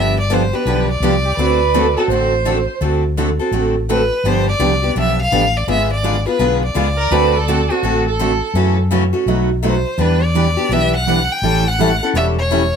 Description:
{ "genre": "acoustic string swing (jazz manouche)", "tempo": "167 BPM", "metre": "4/4", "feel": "swing 63% on 8ths", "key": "D mixolydian", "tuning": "A4 = 440 Hz", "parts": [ { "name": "bright violin", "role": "melody", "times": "0.0-12.8 s", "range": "B4 to G5", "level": "-19 LUFS", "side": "left 1 dB", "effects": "slapback echo" }, { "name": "picked steel-string acoustic guitar", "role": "accompaniment", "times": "0.0-12.6 s", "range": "B2 to A4", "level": "-19 LUFS", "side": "left 3 dB", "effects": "none" }, { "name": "picked steel-string acoustic guitar", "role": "accompaniment", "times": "0.0-12.6 s", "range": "B2 to B4", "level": "-21 LUFS", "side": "right 6 dB", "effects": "none" }, { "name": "mellow fretless electric bass", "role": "bass", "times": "0.0-12.7 s", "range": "E1 to F#2", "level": "-19 LUFS", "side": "left 1 dB", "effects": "none" }, { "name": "rich violin", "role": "second line", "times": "1.3-2.8, 7.0-8.7 s", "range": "F#4 to C5", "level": "-19 LUFS", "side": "right 5 dB", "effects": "none" } ], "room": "light reverb", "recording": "none", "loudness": "-14 LUFS", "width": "side -7 dB against mid", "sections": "0.0-12.8 A section", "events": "none", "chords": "0.0 G7; 1.4 D7; 4.2 G7; 5.7 G#dim7; 7.1 D7; 8.6 F#m7; 9.3 B7b9; 10.0 Em7; 11.4 A7" }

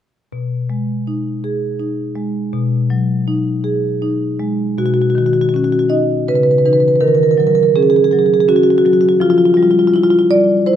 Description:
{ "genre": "classical, contemporary piece for solo marimba", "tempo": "81 BPM", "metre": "3/4", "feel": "rubato", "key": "B lydian", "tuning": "A4 = 440 Hz", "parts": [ { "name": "marimba with medium mallets", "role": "solo", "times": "0.3-10.8 s", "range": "B2 to D#5", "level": "-12 LUFS", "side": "equal", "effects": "none" } ], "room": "moderate recital hall reverb, RT60 1.5 s", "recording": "none", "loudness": "-12 LUFS", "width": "side -10 dB against mid", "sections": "0.3-4.8 A section; 4.8-10.8 B section", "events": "none", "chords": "0.3 B6; 4.8 Badd9; 6.3 C#m9; 7.0 D#m7; 9.2 Fsus2" }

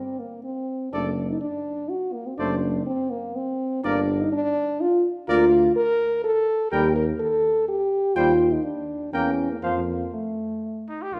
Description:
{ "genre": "classical, brass quintet", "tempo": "124 BPM", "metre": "3/4", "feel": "straight", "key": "G minor", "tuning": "A4 = 440 Hz", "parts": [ { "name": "dark French horn", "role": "accompaniment", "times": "0.0-11.2 s", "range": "A3 to Bb4", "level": "-25 LUFS", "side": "equal", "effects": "none" }, { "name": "warm trumpet", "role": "melody", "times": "0.9-11.2 s", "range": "Eb4 to G5", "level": "-34 LUFS", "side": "equal", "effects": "none" }, { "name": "mellow trumpet", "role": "second line", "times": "0.9-9.8 s", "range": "A4 to C5", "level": "-35 LUFS", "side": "equal", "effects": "none" }, { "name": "warm trombone", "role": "accompaniment", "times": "0.9-11.2 s", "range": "F3 to Bb3", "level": "-35 LUFS", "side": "equal", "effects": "none" }, { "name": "warm tuba", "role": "bass", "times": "0.9-11.2 s", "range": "F#1 to F2", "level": "-31 LUFS", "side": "equal", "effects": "none" } ], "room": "moderate recital hall reverb, RT60 1.6 s", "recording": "none", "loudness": "-24 LUFS", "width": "mono", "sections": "0.0-11.1 A section", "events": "none", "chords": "0.0 N.C.; 0.9 D/F#; 2.4 D7/F#; 3.8 G5; 5.3 Bb/D; 6.7 Eb; 8.2 Cm/Eb (rootless); 9.1 Edim7; 9.6 F" }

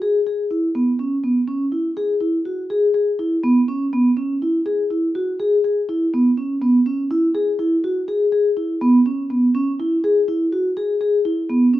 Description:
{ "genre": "contemporary instrumental, contemporary", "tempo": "246 BPM (eighths)", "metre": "11/8", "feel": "straight", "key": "C# minor", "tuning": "A4 = 440 Hz", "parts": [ { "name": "vibraphone with soft mallets", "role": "solo", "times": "0.0-11.8 s", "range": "B3 to G#4", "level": "-17 LUFS", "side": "equal", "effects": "none" } ], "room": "light reverb", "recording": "close, detailed microphones", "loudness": "-17 LUFS", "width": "side -14 dB against mid", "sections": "0.0-11.8 A section", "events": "none", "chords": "none" }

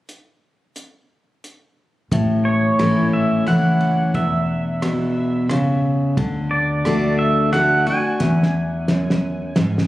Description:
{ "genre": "honky-tonk and classic country", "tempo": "89 BPM", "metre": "3/4", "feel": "straight", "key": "A major", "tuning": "A4 = 440 Hz", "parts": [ { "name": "cloth-damped thuddy drum kit", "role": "drums", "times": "0.1-9.9 s", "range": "hi-hat, kick drum, ride cymbal, rim click, snare drum", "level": "-24 LUFS", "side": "right 1 dB", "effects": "none" }, { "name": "picked steel-string acoustic guitar", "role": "accompaniment", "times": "2.1-9.9 s", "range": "E2 to F#4", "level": "-18 LUFS", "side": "left 1 dB", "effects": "none" }, { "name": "upright bass", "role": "bass", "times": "2.1-9.9 s", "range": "E1 to E2", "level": "-27 LUFS", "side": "equal", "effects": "none" }, { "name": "pedal steel guitar", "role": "melody", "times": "2.5-9.9 s", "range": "C#5 to G#5", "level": "-22 LUFS", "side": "right 2 dB", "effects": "tape echo" } ], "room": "moderate recital hall reverb, RT60 1.7 s", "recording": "recorded on a phone in the room, club reverb, compression", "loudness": "-16 LUFS", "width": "side -16 dB against mid", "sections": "0.1-2.1 A section; 2.1-9.9 B section", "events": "drum fill 8.2-9.9", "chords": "0.1 N.C.; 2.1 A; 4.1 E5; 6.2 D; 8.2 E" }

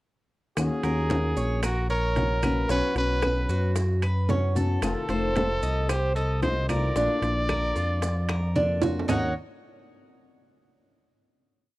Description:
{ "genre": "latin, Cuban son and guajira", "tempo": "113 BPM", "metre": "4/4", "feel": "straight", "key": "unclear", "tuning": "A4 = 441 Hz", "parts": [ { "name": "clear trumpet", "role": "melody", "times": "0.6-9.3 s", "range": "Gb4 to Gb5", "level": "-29 LUFS", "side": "equal", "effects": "none" }, { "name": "flamenco guitar", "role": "accompaniment", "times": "0.6-9.3 s", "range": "B2 to Gb4", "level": "-31 LUFS", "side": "left 2 dB", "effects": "none" }, { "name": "smooth gliding synth bass", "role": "bass", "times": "0.6-9.3 s", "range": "F1 to F#2", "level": "-27 LUFS", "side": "equal", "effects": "none" }, { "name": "bongos", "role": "percussion", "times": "0.6-9.2 s", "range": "none", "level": "-37 LUFS", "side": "left 4 dB", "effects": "none" }, { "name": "claves", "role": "percussion", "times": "0.6-9.2 s", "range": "none", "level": "-40 LUFS", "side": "left 5 dB", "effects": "none" }, { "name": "congas", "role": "percussion", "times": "0.6-9.2 s", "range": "none", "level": "-32 LUFS", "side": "equal", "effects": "none" }, { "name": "maracas", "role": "percussion", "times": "0.6-9.2 s", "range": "none", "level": "-45 LUFS", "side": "right 8 dB", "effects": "none" }, { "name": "timbales", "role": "percussion", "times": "0.6-9.2 s", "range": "none", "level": "-31 LUFS", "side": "right 6 dB", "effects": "none" }, { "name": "Cuban tres", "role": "arpeggios", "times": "0.8-9.3 s", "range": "C#4 to Eb5", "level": "-31 LUFS", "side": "right 2 dB", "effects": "none" } ], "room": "little or no reverb", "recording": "dry, close 1970s-style studio recording", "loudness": "-23 LUFS", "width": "side -18 dB against mid", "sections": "0.6-9.1 verse; 9.1-11.2 final chord", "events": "drum fill 8.3-9.1", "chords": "0.6 Ebm7; 2.7 Bsus2; 4.8 F7; 7.0 Bb; 9.1 Eb7(no3)" }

